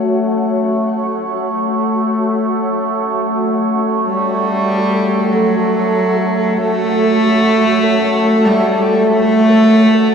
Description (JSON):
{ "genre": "dark ambient drone", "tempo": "free time", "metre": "none", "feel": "none", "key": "F# phrygian", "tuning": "A4 = 442 Hz", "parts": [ { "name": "granular cloud pad", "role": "sustained chords", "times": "0.0-10.1 s", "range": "F#4 to F#5", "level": "-22 LUFS", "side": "left 1 dB", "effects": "built-in reverb, shimmer reverb" }, { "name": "overtone-sweeping drone", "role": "drone", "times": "0.0-10.1 s", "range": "A3", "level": "-16 LUFS", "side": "equal", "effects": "chorus, built-in reverb" }, { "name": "warm cello", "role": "melody", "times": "4.1-10.1 s", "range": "F#3 to A3", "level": "-14 LUFS", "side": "equal", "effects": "shimmer reverb, ping-pong delay" }, { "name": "bubbling stepped-filter texture", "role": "texture", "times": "4.3-10.1 s", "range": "A4", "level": "-19 LUFS", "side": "right 2 dB", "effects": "chorus, built-in reverb, shimmer reverb" } ], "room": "wet cathedral reverb, RT60 5.8 s", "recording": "cassette tape", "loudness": "-12 LUFS", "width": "side -6 dB against mid", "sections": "0.0-10.1 A section", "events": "none", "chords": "0.0 F#m" }